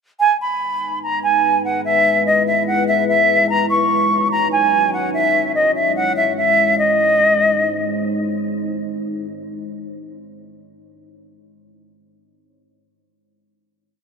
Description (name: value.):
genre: hip hop, drill.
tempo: 146 BPM.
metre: 4/4.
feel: half-time.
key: G# minor.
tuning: A4 = 440 Hz.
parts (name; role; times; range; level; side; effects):
concert flute; melody; 0.2-8.0 s; D#5 to C#6; -15 LUFS; equal; none.
deep dark ambient pad; sustained chords; 0.9-9.8 s; F#3 to C#5; -22 LUFS; left 1 dB; chorus, built-in reverb.
room: moderate plate reverb, RT60 3.7 s.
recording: none.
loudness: -14 LUFS.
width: side -6 dB against mid.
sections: 0.2-6.8 breakdown; 6.8-10.1 final chord.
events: none.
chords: 0.2 G#m; 1.8 E; 3.5 D#m7; 5.1 C#m; 6.8 G#.